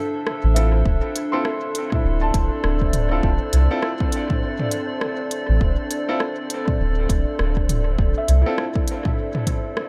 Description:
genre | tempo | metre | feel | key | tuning
ambient dub | 101 BPM | 4/4 | swing 60% on 16ths | unclear | A4 = 439 Hz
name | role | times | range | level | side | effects
warbly tape-like pad | sustained chords | 0.0-9.9 s | D4 to E5 | -30 LUFS | equal | chorus, built-in reverb
felt-muted upright piano | arpeggios | 0.0-9.9 s | E4 to C6 | -33 LUFS | equal | dub echo
organic electronic drum kit | drums | 0.3-9.9 s | hi-hat, rim click, toms | -31 LUFS | equal | overdrive, small room ambience, dub echo
soft dub sub bass | bass | 0.4-8.4 s | D1 to C2 | -21 LUFS | equal | none
clear upright piano | stabs | 0.6-8.6 s | C4 to A4 | -32 LUFS | equal | dub echo
wind-like tuned noise texture | texture | 1.7-9.9 s | C4 to C5 | -36 LUFS | equal | built-in reverb
electronic kick drum | drums | 0.9-9.6 s | none | -25 LUFS | equal | overdrive, small room ambience
room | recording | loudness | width
digital ambience | none | -21 LUFS | mono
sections
0.0-9.9 A section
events
none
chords
0.0 D7(no3)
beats
0.26 | 0.85 1.45 2.04 2.64 | 3.23 3.82 4.42 5.01 | 5.61 6.20 6.79 7.39 | 7.98 8.58 9.17 9.77

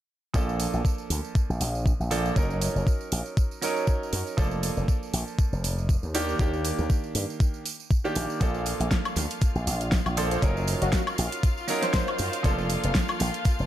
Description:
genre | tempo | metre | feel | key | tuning
nu-disco, nu disco | 119 BPM | 4/4 | swing 55% on 16ths | Bb major | A4 = 440 Hz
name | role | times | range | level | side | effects
bright baby grand piano | accompaniment | 0.3-13.7 s | Eb3 to Bb4 | -31 LUFS | right 3 dB | digital delay
slap bass with an envelope filter | bass | 0.3-13.7 s | F1 to G2 | -28 LUFS | equal | none
electronic kick drum | drums | 0.3-13.6 s | none | -24 LUFS | equal | overdrive
tambourine | percussion | 0.3-13.7 s | none | -39 LUFS | right 10 dB | none
pop drum kit | drums | 0.6-13.6 s | hi-hat, snare drum, woodblock | -31 LUFS | equal | overdrive
bright symphonic string section | sustained chords | 8.4-13.7 s | F4 to F5 | -34 LUFS | left 3 dB | sidechain pumping
wide unison lead | melody | 10.2-12.5 s | Gb4 to C5 | -34 LUFS | left 2 dB | wide subtle chorus, vintage 12-bit sampler grit, digital delay
room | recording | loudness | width
little or no reverb | none | -24 LUFS | side -12 dB against mid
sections
0.3-13.7 A section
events
none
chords
0.3 Bbmaj7; 2.4 Gb6; 4.4 Bbmaj7/F; 6.1 Ebmaj7; 8.4 Bbmaj7; 10.4 Gb6; 12.4 Bbmaj7/F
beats
| 0.34 0.85 1.35 1.86 | 2.36 2.87 3.37 3.88 | 4.38 4.88 5.39 5.89 | 6.40 6.90 7.40 7.91 | 8.41 8.92 9.42 9.93 | 10.43 10.93 11.44 11.94 | 12.45 12.95 13.46

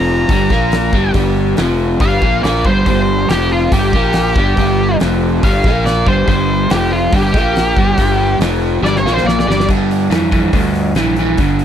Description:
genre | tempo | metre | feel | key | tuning
blues rock power trio and southern rock | 141 BPM | 4/4 | straight | G minor | A4 = 436 Hz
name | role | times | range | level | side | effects
octave-fuzz lead guitar | melody | 0.0-9.7 s | F4 to Bb5 | -18 LUFS | equal | wah, distortion
overdriven electric guitar | riff | 0.0-11.6 s | F2 to Bb3 | -16 LUFS | right 1 dB | none
fuzz fingered electric bass | bass | 0.0-11.6 s | F1 to G2 | -18 LUFS | equal | overdrive
huge arena drum kit | drums | 0.3-11.6 s | crash cymbal, hi-hat, kick drum, snare drum | -18 LUFS | equal | none
room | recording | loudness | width
little or no reverb | dry, close 1970s-style studio recording | -11 LUFS | side -9 dB against mid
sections
0.0-9.7 A section; 9.7-11.6 B section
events
lead electric guitar solo 0.0-9.7; drum fill 8.8-9.7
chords
0.0 Gm; 9.7 Gm7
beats
0.30 0.72 | 1.15 1.58 2.01 2.44 | 2.86 3.29 3.71 4.14 | 4.57 4.99 5.42 5.84 | 6.27 6.70 7.12 7.55 | 7.97 8.40 8.82 9.25 | 9.68 10.10 10.53 10.96 | 11.38

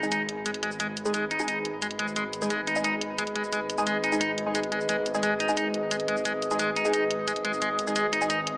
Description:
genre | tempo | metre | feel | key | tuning
dark technical drum and bass | 176 BPM | 4/4 | straight | G# minor | A4 = 442 Hz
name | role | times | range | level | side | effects
dark analog pad | sustained chords | 0.0-8.6 s | G#4 to D#6 | -31 LUFS | equal | wide subtle chorus
clean electric guitar | arpeggios | 0.0-8.4 s | G#3 to D#4 | -28 LUFS | equal | low-pass filter, tape echo
band-passed chord stab | stabs | 0.0-8.6 s | G#3 to G#4 | -31 LUFS | equal | phaser, wide subtle chorus, tape echo
wide detuned saw bass | bass | 0.0-8.6 s | G#1 | -38 LUFS | equal | chorus, tube saturation
electronic shaker and hi-hat | drums | 0.0-8.5 s | none | -32 LUFS | equal | overdrive
sub drop | sound effects | 0.0-0.8 s | none | barely audible | none | none
room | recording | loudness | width
wet digital room reverb, RT60 1.2 s, digital ambience | small speaker sound | -25 LUFS | side -25 dB against mid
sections
0.0-8.6 A section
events
impact 0.0-0.8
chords
0.0 G#m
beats
0.12 0.46 | 0.80 1.14 1.48 1.82 | 2.16 2.50 2.84 3.19 | 3.53 3.87 4.21 4.55 | 4.89 5.23 5.57 5.91 | 6.25 6.59 6.93 7.28 | 7.62 7.96 8.30

